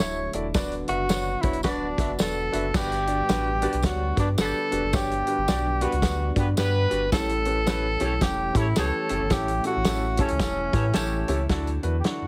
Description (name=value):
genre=uptempo 1960s-style soul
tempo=110 BPM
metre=4/4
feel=swing 61% on 8ths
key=unclear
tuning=A4 = 439 Hz
part: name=breathy tenor saxophone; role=melody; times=0.0-12.3 s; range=C#4 to C#5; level=-30 LUFS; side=equal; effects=none
part: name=warm concert grand piano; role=accompaniment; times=0.0-12.3 s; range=G2 to E5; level=-33 LUFS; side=equal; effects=none
part: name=mellow tonewheel organ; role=sustained chords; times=0.0-11.5 s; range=D3 to G4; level=-38 LUFS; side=equal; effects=slow rotary speaker
part: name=sub bass with octave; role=bass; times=0.0-12.3 s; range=D1 to A2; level=-31 LUFS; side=equal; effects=none
part: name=warm soul drum kit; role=drums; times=0.0-12.2 s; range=crash cymbal, hi-hat, kick drum, snare drum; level=-30 LUFS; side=equal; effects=none
part: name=tambourine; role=percussion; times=0.0-11.1 s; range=none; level=-40 LUFS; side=equal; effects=none
part: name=clear horn section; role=second line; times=1.7-11.4 s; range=B3 to D5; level=-38 LUFS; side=equal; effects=tape echo
room=light reverb, small room ambience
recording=heavily compressed radio sound, multiband compression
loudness=-25 LUFS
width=mono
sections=0.0-2.7 A section; 2.7-11.5 B section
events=band accent 0.5-2.7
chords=0.0 Dadd9; 0.5 Bm/D; 2.7 Gmaj7; 7.1 A7; 11.5 Dadd9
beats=0.00 | 0.55 1.10 1.65 2.20 | 2.75 3.29 3.84 4.39 | 4.94 5.48 6.03 6.58 | 7.12 7.67 8.22 8.76 | 9.31 9.86 10.41 10.95 | 11.50 12.05